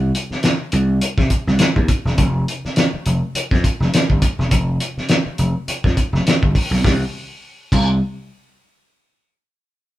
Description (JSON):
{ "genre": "funk", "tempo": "103 BPM", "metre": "4/4", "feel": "swing 56% on 16ths", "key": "C major", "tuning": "A4 = 443 Hz", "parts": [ { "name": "gritty slap bass", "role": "bass", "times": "0.0-8.0 s", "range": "E1 to C3", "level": "-19 LUFS", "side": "equal", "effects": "overdrive" }, { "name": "cloth-damped thuddy drum kit", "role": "drums", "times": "0.1-7.9 s", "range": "crash cymbal, hi-hat, kick drum, snare drum", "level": "-17 LUFS", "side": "equal", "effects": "none" } ], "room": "moderate large studio reverb, RT60 0.9 s", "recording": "band playing live in one room", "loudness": "-16 LUFS", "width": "side -15 dB against mid", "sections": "0.0-6.8 A section; 6.8-9.2 B section", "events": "none", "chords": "none", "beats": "0.43 1.01 1.59 | 2.18 2.76 3.34 3.93 | 4.51 5.09 5.68 6.26 | 6.84 7.43" }